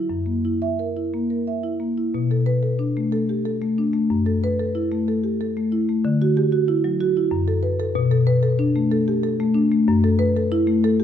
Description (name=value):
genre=classical, contemporary piece for solo marimba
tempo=93 BPM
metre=3/4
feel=rubato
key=B minor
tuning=A4 = 441 Hz
part: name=marimba with soft mallets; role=solo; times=0.0-11.0 s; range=F#2 to E5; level=-18 LUFS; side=left 1 dB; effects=none
room=wet recital hall reverb, RT60 1.7 s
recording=minimal, uncompressed stereo recording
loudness=-19 LUFS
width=side -9 dB against mid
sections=0.0-2.1 A section; 2.1-11.0 B section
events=none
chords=0.1 F#7; 2.1 Bm7; 4.1 F#m7; 6.0 Dadd9; 7.3 F#m; 8.0 Bm7; 9.9 F#m7